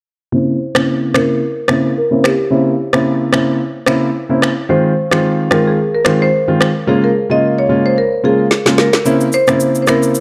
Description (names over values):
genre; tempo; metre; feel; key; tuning
afrobeats; 110 BPM; 4/4; swing 55% on 16ths; unclear; A4 = 442 Hz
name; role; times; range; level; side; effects
marimba with medium hard mallets; melody; 0.3-10.2 s; G4 to Eb5; -19 LUFS; equal; low-pass filter
warm baby grand piano; accompaniment; 0.3-10.1 s; Db3 to F4; -16 LUFS; equal; low-pass filter
electronic rim click, finger snaps, snare drum and shaker; drums; 0.8-10.2 s; none; -19 LUFS; equal; overdrive
room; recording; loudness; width
moderate plate reverb, RT60 1.6 s, studio reverb; dark, warm production; -14 LUFS; mono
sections
0.3-9.1 A section; 9.1-10.2 B section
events
filter sweep 0.3-9.1; drum fill 8.5-9.1; kick muted 9.1-10.2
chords
0.3 C7b9; 4.7 Fm7; 6.9 Bbm7; 9.1 C7b9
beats
| 0.33 0.87 1.42 1.96 | 2.51 3.06 3.60 4.15 | 4.69 5.24 5.78 6.33 | 6.87 7.42 7.96 8.51 | 9.05 9.60 10.15